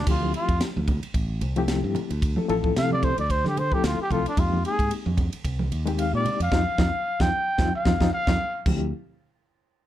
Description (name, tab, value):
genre	electric jazz fusion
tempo	112 BPM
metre	4/4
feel	swing 56% on 16ths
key	unclear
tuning	A4 = 440 Hz
part	breathy trumpet	melody	0.0-8.6 s	D4 to G5	-26 LUFS	equal	slapback echo, plate reverb
part	fingered electric bass	bass	0.0-8.9 s	A1 to D3	-27 LUFS	equal	none
part	reed electric piano	accompaniment	0.1-8.9 s	F3 to A4	-28 LUFS	left 5 dB	fast tremolo
part	crisp fusion drum kit	drums	0.1-8.8 s	crash cymbal, kick drum, ride cymbal, snare drum	-27 LUFS	equal	none
part	congas	percussion	0.2-8.9 s	none	-31 LUFS	right 3 dB	none
room	light reverb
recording	dark, warm production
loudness	-22 LUFS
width	side -12 dB against mid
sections	0.0-8.7 A section; 8.7-9.9 B section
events	trumpet solo 0.0-8.7; band accent 6.5-8.7; drum fill 7.6-8.7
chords	0.1 Dm11; 4.4 Fm11; 8.7 Dm11